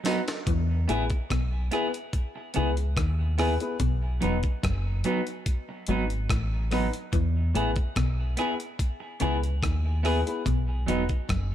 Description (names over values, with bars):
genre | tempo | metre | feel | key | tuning
roots reggae | 72 BPM | 4/4 | straight | E major | A4 = 440 Hz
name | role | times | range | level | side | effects
semi-hollow electric guitar | accompaniment | 0.0-11.0 s | F#3 to G#4 | -32 LUFS | right 3 dB | dub echo
dark upright piano | stabs | 0.0-11.0 s | B3 to B4 | -33 LUFS | left 4 dB | none
breakbeat sampler-style drum kit | drums | 0.0-11.5 s | hi-hat, kick drum, rim click, snare drum | -29 LUFS | equal | none
semi-hollow electric guitar | riff | 0.5-11.5 s | E2 to E3 | -33 LUFS | left 4 dB | none
deep dub fingered electric bass | bass | 0.5-11.5 s | E1 to E2 | -27 LUFS | equal | none
room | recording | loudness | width
little or no reverb | none | -24 LUFS | side -11 dB against mid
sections
0.5-11.5 A section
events
drum fill 0.0-0.5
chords
0.5 E; 3.8 B; 7.1 E; 10.5 B